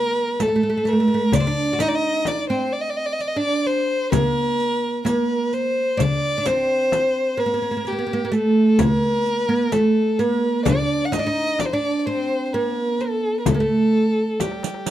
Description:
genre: Arabic maqam ensemble.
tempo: 128 BPM (eighths).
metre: 10/8.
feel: straight.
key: unclear.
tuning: A4 = 438 Hz.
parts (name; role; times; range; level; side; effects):
warm violin; melody; 0.0-14.9 s; G4 to F#5; -22 LUFS; left 1 dB; none.
oud; second line; 0.0-14.9 s; G3 to F#4; -22 LUFS; right 2 dB; none.
darbuka; percussion; 0.4-14.9 s; none; -26 LUFS; left 3 dB; none.
frame drum; percussion; 0.4-14.6 s; none; -26 LUFS; left 6 dB; none.
riq; percussion; 0.4-14.9 s; none; -30 LUFS; right 9 dB; none.
room: light reverb, small room ambience.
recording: dry, close 1970s-style studio recording.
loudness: -18 LUFS.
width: side -12 dB against mid.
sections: 0.0-14.9 A section.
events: drum fill 14.4-14.9.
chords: none.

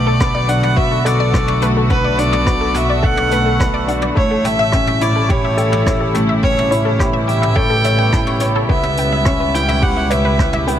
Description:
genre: piano and strings electronica.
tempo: 106 BPM.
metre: 4/4.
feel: straight.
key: B minor.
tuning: A4 = 440 Hz.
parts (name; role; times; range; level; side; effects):
rich violin; melody; 0.0-10.7 s; B4 to G5; -20 LUFS; equal; ping-pong delay.
warm studio string section; sustained chords; 0.0-10.8 s; C#3 to F#4; -24 LUFS; equal; sidechain pumping.
felt-muted upright piano; riff; 0.0-10.8 s; A3 to C#5; -20 LUFS; left 1 dB; ping-pong delay.
dark symphonic double bass section; bass; 0.0-10.8 s; A1 to C#2; -19 LUFS; right 1 dB; sidechain pumping.
wide unison pluck; arpeggios; 0.1-10.7 s; A4 to C#6; -24 LUFS; left 3 dB; sidechain pumping, ping-pong delay.
electronic kick drum; drums; 0.2-10.5 s; none; -18 LUFS; equal; none.
jazz brush drum kit; drums; 0.2-10.8 s; hi-hat, rim click, toms; -27 LUFS; equal; none.
room: light reverb, small room ambience.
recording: none.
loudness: -13 LUFS.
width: side -10 dB against mid.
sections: 0.0-10.8 A section.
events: none.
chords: 0.0 Bm7; 4.2 A7; 8.7 C#m7b5.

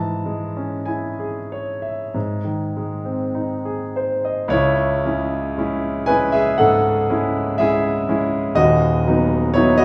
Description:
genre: classical, romantic nocturne for solo piano.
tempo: 47-62 BPM.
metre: 4/4.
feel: rubato.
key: C# minor.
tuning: A4 = 439 Hz.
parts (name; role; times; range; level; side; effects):
clear concert grand piano; solo; 0.0-9.8 s; D#1 to A5; -20 LUFS; equal; none.
room: wet recital hall reverb, RT60 1.6 s.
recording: studio ambience.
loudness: -20 LUFS.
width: mono.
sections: 0.0-4.5 A section; 4.5-9.8 B section.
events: none.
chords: 0.0 C#m/G#; 2.1 G#; 4.5 C#m; 8.6 B/D#.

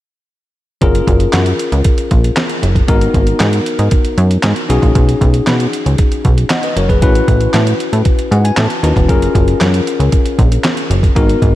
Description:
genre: early-eighties boogie funk.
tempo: 116 BPM.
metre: 4/4.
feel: straight.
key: F# major.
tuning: A4 = 440 Hz.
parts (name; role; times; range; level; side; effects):
bell-like tine electric piano; accompaniment; 0.8-11.6 s; B3 to A5; -17 LUFS; left 3 dB; none.
plucky analog bass; bass; 0.8-11.6 s; E1 to B2; -13 LUFS; equal; none.
clean 12-bit digital drum machine; drums; 0.8-11.5 s; handclaps, hi-hat, kick drum, snare drum; -14 LUFS; equal; none.
room: light reverb, digital ambience.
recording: none.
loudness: -10 LUFS.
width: side -15 dB against mid.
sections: 0.8-11.6 A section.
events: tine electric piano fill 8.1-9.1.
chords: 0.8 F#maj9; 2.9 G#m9; 4.7 B69; 7.0 A69; 9.1 F#maj9.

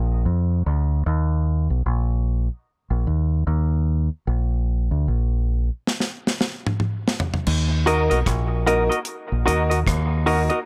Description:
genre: dub reggae.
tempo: 75 BPM.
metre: 4/4.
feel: swing 60% on 16ths.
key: Eb harmonic minor.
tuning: A4 = 440 Hz.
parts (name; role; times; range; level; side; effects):
deep dub fingered electric bass; bass; 0.0-10.5 s; Bb1 to F2; -22 LUFS; equal; none.
deep reggae drum kit; drums; 5.9-10.7 s; crash cymbal, hi-hat, kick drum, rim click, snare drum, toms; -27 LUFS; equal; none.
semi-hollow electric guitar; accompaniment; 7.9-10.6 s; Gb4 to Eb5; -26 LUFS; equal; dub echo.
warm grand piano; stabs; 7.9-10.6 s; Bb3 to Bb4; -26 LUFS; equal; dub echo.
room: studio reverb.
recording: none.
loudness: -22 LUFS.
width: mono.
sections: 0.0-7.5 A section; 7.5-10.7 B section.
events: break 0.0-7.5; drum fill 5.9-7.5.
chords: 0.0 Bb; 1.1 Eb5; 4.3 N.C.; 7.5 Ebm.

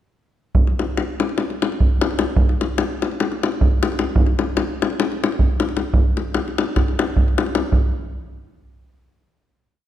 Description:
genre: balkan folk.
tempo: 302 BPM (eighths).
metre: 9/8.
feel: straight.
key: none.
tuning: none.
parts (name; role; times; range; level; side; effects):
davul; percussion; 0.5-7.9 s; none; -17 LUFS; equal; none.
room: wet scoring stage reverb, RT60 1.5 s.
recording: none.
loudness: -17 LUFS.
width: side -11 dB against mid.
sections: 0.5-7.7 A section; 7.7-9.9 final hit.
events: none.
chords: none.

